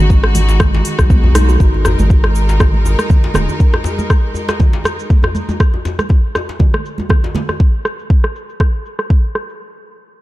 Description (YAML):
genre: afro house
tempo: 120 BPM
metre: 4/4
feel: swing 55% on 16ths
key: G# minor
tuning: A4 = 440 Hz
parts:
  - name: clear studio string section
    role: sustained chords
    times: 0.0-5.6 s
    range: G#3 to A#4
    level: -24 LUFS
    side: left 1 dB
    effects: sidechain pumping
  - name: round analog bass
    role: bass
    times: 0.0-3.5 s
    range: D#1 to B1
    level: -13 LUFS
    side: equal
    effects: sidechain pumping
  - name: afro-pop drum kit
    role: drums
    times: 0.1-9.6 s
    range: cabasa, hi-hat, rim click, toms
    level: -21 LUFS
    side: equal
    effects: low-pass filter on toms, low-pass filter on perc, low-pass filter on snare, low-pass filter on hats
  - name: electronic kick drum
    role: drums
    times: 0.1-9.2 s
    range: none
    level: -11 LUFS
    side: equal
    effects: none
  - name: djembe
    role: percussion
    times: 0.1-7.6 s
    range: none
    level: -24 LUFS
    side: left 2 dB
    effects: none
  - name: congas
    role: percussion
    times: 0.4-7.5 s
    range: none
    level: -23 LUFS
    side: right 4 dB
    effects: none
  - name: kalimba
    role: arpeggios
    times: 0.6-1.6 s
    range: D#3 to F#4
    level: -24 LUFS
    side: equal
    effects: sidechain pumping, dub echo
room: studio reverb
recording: dark, warm production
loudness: -11 LUFS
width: side -17 dB against mid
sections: 0.0-1.6 A section; 1.6-9.6 B section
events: drop 0.0-1.6; band accent 1.4; filter sweep on drum 1.6-9.6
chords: 0.0 G#m7; 1.6 G#5